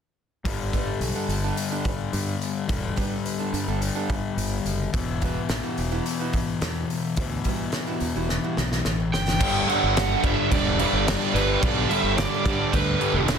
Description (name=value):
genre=quiet-loud alternative rock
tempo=107 BPM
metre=4/4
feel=straight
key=E minor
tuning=A4 = 440 Hz
part: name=fuzz guitar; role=riff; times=0.4-13.4 s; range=E2 to G3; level=-28 LUFS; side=left 7 dB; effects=distortion
part: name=growling fingered electric bass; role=bass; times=0.5-13.4 s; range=E1 to G2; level=-28 LUFS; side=right 1 dB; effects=overdrive
part: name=loose indie drum kit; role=drums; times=0.5-13.4 s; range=crash cymbal, hi-hat, kick drum, snare drum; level=-27 LUFS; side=right 1 dB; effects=soft clipping on snare
part: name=picked steel-string acoustic guitar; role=arpeggios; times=0.6-9.0 s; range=G3 to A4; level=-34 LUFS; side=right 11 dB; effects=none
part: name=lead guitar through a small cranked amp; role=melody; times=9.1-13.2 s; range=B4 to G5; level=-26 LUFS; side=right 3 dB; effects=overdrive
part: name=fuzz guitar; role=riff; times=9.4-13.4 s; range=G2 to G3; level=-30 LUFS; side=right 2 dB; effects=distortion
part: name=sludgy distorted guitar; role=riff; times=9.4-13.4 s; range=G2 to G3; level=-29 LUFS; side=right 14 dB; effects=overdrive
room=small room ambience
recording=dense, heavily limited modern master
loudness=-22 LUFS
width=side -7 dB against mid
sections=0.5-9.4 A section; 9.4-13.4 B section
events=drum fill 8.3-9.4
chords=0.5 Emadd9; 9.4 G